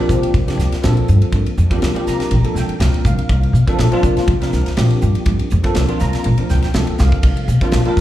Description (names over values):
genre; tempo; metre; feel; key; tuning
electric jazz fusion; 122 BPM; 4/4; swing 55% on 16ths; unclear; A4 = 440 Hz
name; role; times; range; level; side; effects
bell-like tine electric piano; accompaniment; 0.0-8.0 s; F3 to Bb5; -20 LUFS; equal; ensemble chorus, slapback echo
upright bass; bass; 0.1-8.0 s; Bb1 to C3; -16 LUFS; equal; none
modern studio drum kit; drums; 0.1-8.0 s; crash cymbal, hi-hat, kick drum, ride cymbal, snare drum; -21 LUFS; equal; none
room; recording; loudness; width
small room ambience; live gig heard through the venue's PA, club reverb; -13 LUFS; side -13 dB against mid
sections
0.0-8.0 A section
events
drum fill 7.0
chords
0.0 C9sus4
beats
0.34 0.83 | 1.32 1.82 2.31 2.80 | 3.29 3.79 4.28 4.77 | 5.27 5.76 6.25 6.74 | 7.24 7.73